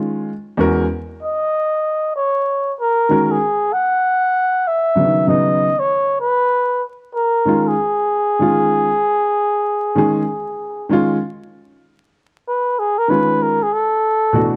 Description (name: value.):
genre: hip hop.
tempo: 96 BPM.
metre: 4/4.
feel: swing 66% on 16ths.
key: G# dorian.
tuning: A4 = 440 Hz.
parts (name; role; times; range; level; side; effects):
warm grand piano; accompaniment; 0.0-14.6 s; E2 to A#4; -19 LUFS; equal; none.
trumpet with bucket mute; melody; 1.2-14.6 s; G#4 to F#5; -18 LUFS; equal; none.
room: light reverb.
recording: vinyl crackle.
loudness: -18 LUFS.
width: mono.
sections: 0.0-11.5 A section; 11.5-14.6 B section.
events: muted trumpet solo 11.5-14.6.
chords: 0.3 Eadd9; 1.5 D#m7; 4.0 C#m11; 5.3 C#9sus4; 6.5 G#5; 14.0 Bm7.